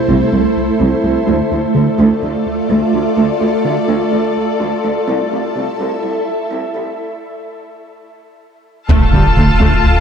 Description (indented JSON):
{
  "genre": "cinematic, hybrid orchestral and electronic film score",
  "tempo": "126 BPM",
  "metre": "4/4",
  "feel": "straight",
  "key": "D minor",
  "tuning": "A4 = 441 Hz",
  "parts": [
    { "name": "ethereal airy pad", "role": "sustained chords", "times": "0.0-10.0 s", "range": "A3 to F5", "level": "-16 LUFS", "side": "equal", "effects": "ensemble chorus, built-in reverb" },
    { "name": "rubbery square bass", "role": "riff", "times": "0.1-10.0 s", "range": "C2 to D3", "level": "-19 LUFS", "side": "left 1 dB", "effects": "none" },
    { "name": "warm symphonic cello section", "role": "bass", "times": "0.1-9.7 s", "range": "C2 to D2", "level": "-18 LUFS", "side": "right 2 dB", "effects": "none" },
    { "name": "warm symphonic violin section", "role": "second line", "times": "8.9-10.0 s", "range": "A4 to A5", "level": "-18 LUFS", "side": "left 4 dB", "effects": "none" },
    { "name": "rich symphonic viola section", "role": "accompaniment", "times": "8.9-10.0 s", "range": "G3 to F4", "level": "-17 LUFS", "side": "equal", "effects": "none" },
    { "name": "rich symphonic double bass section", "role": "bass", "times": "8.9-9.7 s", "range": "D2", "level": "-20 LUFS", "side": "right 3 dB", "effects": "none" },
    { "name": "sub bass with octave", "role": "bass", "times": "8.9-10.0 s", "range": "D1", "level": "-17 LUFS", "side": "equal", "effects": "none" },
    { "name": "impact", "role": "sound effects", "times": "8.9-10.0 s", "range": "none", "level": "-17 LUFS", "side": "equal", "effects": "none" }
  ],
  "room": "moderate concert hall reverb, RT60 1.9 s",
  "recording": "dark, warm production, high-pass filter",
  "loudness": "-12 LUFS",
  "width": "side -7 dB against mid",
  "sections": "0.0-8.9 A section; 8.9-10.0 B section",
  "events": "build-up 0.0-8.9; filter sweep 0.0-8.9; break 7.0-8.9; impact 8.9-10.0",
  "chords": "0.0 Am/C; 1.3 Dm; 5.1 Am/C; 8.9 Dm",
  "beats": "0.32 0.80 | 1.27 1.75 2.23 2.70 | 3.18 3.65 4.13 4.61 | 5.08 5.56 6.04 6.51 | 6.99 7.46 7.94 8.42 | 8.89 9.37 9.84"
}